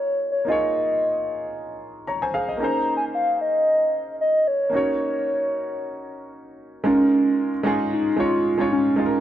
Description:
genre	amapiano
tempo	113 BPM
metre	4/4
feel	swing 55% on 16ths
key	Db major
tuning	A4 = 441 Hz
part	hollow clarinet-like synth lead	melody	0.0-9.2 s	Db4 to Bb5	-21 LUFS	equal	chorus, digital delay
part	warm concert grand piano	accompaniment	0.0-9.2 s	Ab3 to Bb5	-26 LUFS	equal	none
room	light reverb, studio reverb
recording	dark, warm production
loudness	-19 LUFS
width	side -11 dB against mid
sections	0.0-6.9 A section; 6.9-9.2 B section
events	none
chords	0.0 Db69; 2.6 Bbm11; 4.7 Ebm7; 6.9 Db69

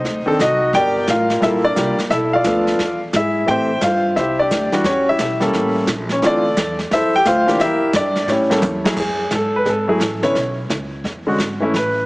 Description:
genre	jazz piano trio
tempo	174 BPM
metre	4/4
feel	swing 64% on 8ths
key	D minor, F# minor from 9.0 s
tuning	A4 = 438 Hz
part	warm concert grand piano	melody	0.0-12.1 s	D3 to G5	-16 LUFS	equal	none
part	upright bass	bass	0.0-12.1 s	G1 to A2	-26 LUFS	equal	none
part	jazz brush drum kit	drums	0.0-12.1 s	brushed snare drum, crash cymbal, hi-hat, kick drum, snare drum, toms	-24 LUFS	right 1 dB	none
room	moderate concert hall reverb, RT60 1.9 s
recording	heavily compressed radio sound, multiband compression, small speaker sound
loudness	-15 LUFS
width	side -22 dB against mid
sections	0.0-9.0 A section; 9.0-12.1 B section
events	drum fill 8.3-9.0; grand piano solo 9.0-12.1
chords	0.0 D7b9; 0.7 Gm9; 2.1 Bm7b5; 2.8 E7b9; 3.5 Am7; 4.9 Emadd9; 5.5 A7b9; 6.2 Dm9; 7.6 Em7b5; 8.3 A7; 9.0 F#madd9; 10.4 Bsus2; 11.0 E6

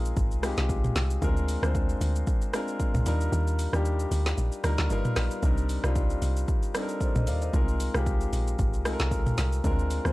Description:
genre	amapiano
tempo	114 BPM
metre	4/4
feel	swing 55% on 16ths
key	unclear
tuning	A4 = 440 Hz
part	warm concert grand piano	accompaniment	0.0-10.1 s	G3 to Bb5	-31 LUFS	left 2 dB	none
part	deep log drum bass	bass	0.0-10.1 s	G1 to Eb2	-27 LUFS	equal	none
part	afro-pop drum kit	drums	0.1-10.1 s	hi-hat, kick drum, rim click, shaker, snare drum, toms	-28 LUFS	equal	none
room	little or no reverb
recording	dry, gritty hardware recording, cassette tape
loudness	-24 LUFS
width	side -19 dB against mid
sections	0.0-10.1 A section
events	kick muted 3.3-5.4; grand piano fill 4.4-5.4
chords	0.0 Ab6; 1.2 Bb9/D; 3.1 Ebmaj7; 4.9 G7alt; 5.4 Cm9; 7.5 Ab6

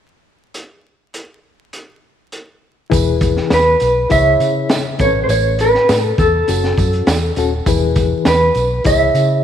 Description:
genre	uptempo 1960s-style soul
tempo	101 BPM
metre	4/4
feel	straight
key	E major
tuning	A4 = 437 Hz
part	crunchy breakbeat drum kit	drums	0.5-9.3 s	hi-hat, kick drum, snare drum	-19 LUFS	equal	none
part	reed electric piano	accompaniment	2.9-9.4 s	A2 to C#5	-19 LUFS	left 7 dB	overdrive, tremolo
part	vintage muted fingered electric bass	bass	2.9-9.4 s	D#1 to C#3	-19 LUFS	right 1 dB	none
part	tambourine	percussion	2.9-9.3 s	none	-30 LUFS	right 12 dB	none
part	mellow electric guitar	melody	3.5-9.4 s	A4 to E5	-14 LUFS	right 1 dB	tremolo
room	moderate echo chamber reverb, RT60 2.2 s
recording	1960s-style stereo with parts hard left and right, vinyl crackle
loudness	-12 LUFS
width	side -9 dB against mid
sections	0.5-2.9 A section; 2.9-9.4 B section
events	none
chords	0.5 N.C.; 2.9 E; 4.1 C#m; 5.0 Aadd9; 6.5 F#m; 7.7 E; 8.8 C#m

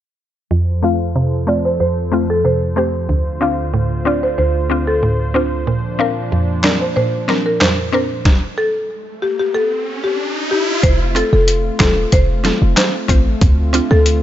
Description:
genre	dancehall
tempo	93 BPM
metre	4/4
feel	straight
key	F major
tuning	A4 = 435 Hz
part	mallet-like synth pluck	accompaniment	0.5-13.9 s	D2 to C5	-18 LUFS	equal	chorus, sidechain pumping, low-pass filter
part	warm analog pad	sustained chords	0.5-14.2 s	D2 to C5	-22 LUFS	equal	chorus, sidechain pumping, low-pass filter
part	buzzing marimba with medium mallets	melody	0.8-14.0 s	G4 to F5	-19 LUFS	equal	low-pass filter
part	trip hop sampler-style drum kit	drums	6.6-14.2 s	handclaps, hi-hat, kick drum, snare drum	-16 LUFS	equal	none
part	riser	sound effects	9.3-10.8 s	none	-23 LUFS	equal	none
part	short 808-style bass	bass	10.8-14.2 s	E1 to D2	-15 LUFS	equal	none
room	light reverb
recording	nothing above 7.7 kHz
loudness	-14 LUFS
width	side -12 dB against mid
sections	0.5-10.8 A section; 10.8-14.2 B section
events	filter sweep 0.5-10.8; riser 9.3-10.8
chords	0.5 F; 3.1 Dm7; 5.7 Bbadd9; 8.3 N.C.; 10.8 F; 13.4 Dm7

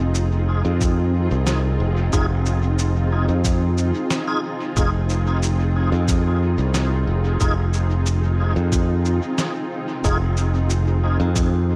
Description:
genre	ambient dub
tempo	91 BPM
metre	4/4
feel	straight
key	F minor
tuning	A4 = 442 Hz
part	granular cloud pad	sustained chords	0.0-11.8 s	C4 to Eb5	-29 LUFS	equal	built-in reverb
part	modern bright fingered electric bass	bass	0.0-11.8 s	F1 to F2	-21 LUFS	equal	none
part	electronic cabasa and snare drum	drums	0.1-11.5 s	none	-31 LUFS	equal	studio reverb, dub echo
part	electronic kick drum	drums	0.8-11.5 s	none	-24 LUFS	equal	studio reverb
part	tonewheel organ	stabs	2.1-10.2 s	Eb4 to Ab4	-32 LUFS	equal	chorus vibrato, slow rotary speaker, dub echo
room	light reverb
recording	none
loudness	-20 LUFS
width	mono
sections	0.0-11.8 A section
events	none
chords	0.0 Fm7

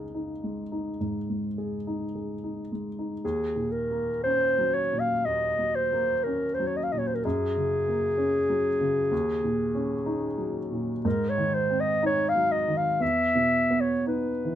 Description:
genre	classical, impressionist duo for clarinet and grand piano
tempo	50-65 BPM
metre	4/4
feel	rubato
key	Eb dorian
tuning	A4 = 440 Hz
part	warm baby grand piano	accompaniment	0.0-14.6 s	Db2 to F5	-29 LUFS	equal	none
part	dark clarinet	melody	3.2-14.6 s	Ab4 to F5	-25 LUFS	equal	none
room	light reverb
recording	minimal, uncompressed stereo recording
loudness	-24 LUFS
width	side -11 dB against mid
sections	0.0-3.2 A section; 3.2-14.6 B section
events	none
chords	0.0 Dbadd9; 3.2 Ebm7; 7.2 Gbadd9; 9.1 Ebm7; 11.0 Ab7; 13.0 E5

